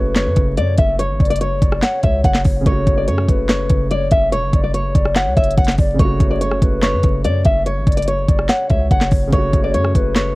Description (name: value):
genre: hip hop, trap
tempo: 144 BPM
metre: 4/4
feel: half-time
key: F# minor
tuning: A4 = 440 Hz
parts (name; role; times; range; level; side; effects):
- nylon-string guitar; melody; 0.0-10.4 s; C#5 to F#5; -21 LUFS; left 1 dB; low-pass filter
- hollow clarinet-like synth lead; second line; 0.0-10.4 s; B4 to E5; -23 LUFS; left 2 dB; chorus, analog delay
- dark concert grand piano; accompaniment; 0.0-10.4 s; C#3 to F#4; -26 LUFS; right 2 dB; low-pass filter
- hard-hitting 808-style bass; bass; 0.0-10.4 s; E1 to F#2; -19 LUFS; equal; none
- trap drum kit; drums; 0.2-10.3 s; handclaps, hi-hat, kick drum, rim click, snare drum; -16 LUFS; equal; none
room: little or no reverb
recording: worn, warbling old tape, cassette tape, vinyl crackle, warbly pitch drift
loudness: -14 LUFS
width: side -21 dB against mid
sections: 0.0-2.7 A section; 2.7-10.4 A section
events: none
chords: 0.0 F#m